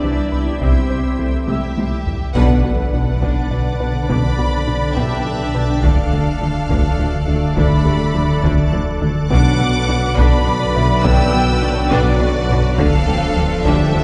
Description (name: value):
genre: cinematic, hybrid orchestral and electronic film score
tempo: 69 BPM (dotted quarters)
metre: 6/8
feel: straight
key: B phrygian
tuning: A4 = 440 Hz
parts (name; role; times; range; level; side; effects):
- warm symphonic violin section; second line; 0.0-14.0 s; F#4 to G5; -29 LUFS; equal; none
- warm symphonic viola section; accompaniment; 0.0-14.0 s; C4 to E5; -30 LUFS; equal; none
- mellow French horn section; sustained chords; 0.0-14.0 s; A3 to D4; -30 LUFS; equal; none
- shimmering ambient pad; sustained chords; 0.0-14.0 s; D3 to E5; -28 LUFS; equal; chorus, built-in reverb
- woody wave-folded pluck; arpeggios; 0.0-14.0 s; C3 to B4; -31 LUFS; equal; none
- rubbery square bass; riff; 0.0-14.0 s; C2 to B3; -26 LUFS; equal; none
- punchy sub bass; bass; 0.0-14.0 s; D1 to C2; -27 LUFS; equal; none
- warm symphonic cello section; bass; 0.0-14.0 s; B2 to D3; -27 LUFS; equal; none
- warm concert grand piano; texture; 0.0-14.0 s; G3 to B5; -35 LUFS; equal; none
- taiko ensemble; drums; 0.6-14.0 s; none; -23 LUFS; equal; none
- rich studio violin section; melody; 1.5-14.0 s; D5 to E6; -28 LUFS; equal; none
- mellow trombone section; sustained chords; 2.3-14.0 s; D3 to D4; -29 LUFS; equal; none
- dark symphonic double bass section; bass; 2.4-14.0 s; B1 to D2; -26 LUFS; equal; none
- mellow tuba; bass; 2.4-14.0 s; B1 to D2; -26 LUFS; equal; none
- impact; sound effects; 2.4-4.1 s; none; -28 LUFS; equal; none
room: wet concert hall reverb, RT60 2.0 s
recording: heard from further back in the room, nothing above 10.4 kHz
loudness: -16 LUFS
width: mono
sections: 0.0-2.4 A section; 2.4-14.0 B section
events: drum fill 1.5-2.4; band accent 2.4-2.9; impact 2.4-4.1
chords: 0.0 C; 2.4 Bm; 5.8 Dm; 9.3 Bm; 12.8 Dm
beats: | 0.61 1.48 | 2.35 3.22 | 4.09 4.96 | 5.83 6.70 | 7.57 8.44 | 9.31 10.18 | 11.05 11.92 | 12.79 13.66